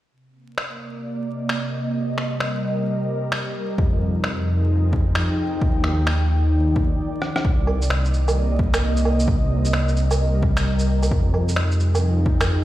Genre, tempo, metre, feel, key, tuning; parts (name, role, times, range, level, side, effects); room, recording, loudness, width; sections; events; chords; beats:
future garage; 131 BPM; 4/4; swing 63% on 16ths; C minor; A4 = 440 Hz
ethereal airy pad; sustained chords; 0.7-12.6 s; C3 to G5; -24 LUFS; equal; ensemble chorus, built-in reverb, vintage 12-bit sampler grit, sidechain pumping
electronic finger snaps, rim click, woodblock and shaker; drums; 0.6-12.5 s; -26 LUFS; right 1 dB
dark detuned saw bass; bass; 3.8-12.6 s; C2 to F2; -20 LUFS; equal; sidechain pumping
electronic kick drum; drums; 3.8-12.4 s; -21 LUFS; equal; overdrive
light reverb, digital ambience; played on a big sound system in a bare room, large studio reverb, vinyl crackle; -19 LUFS; side -14 dB against mid
0.1-7.4 A section; 7.4-12.6 B section
break 7.0-7.4; drum fill 7.2
0.1 Cm9; 2.0 Cm7; 3.8 Fm9; 5.6 Ebmaj7; 7.4 Cm9; 9.3 Cm7; 11.1 Fm9
| 0.12 0.58 1.04 1.50 | 1.95 2.41 2.87 3.33 | 3.79 4.24 4.70 5.16 | 5.62 6.08 6.53 6.99 | 7.45 7.91 8.37 8.82 | 9.28 9.74 10.20 10.65 | 11.11 11.57 12.03 12.49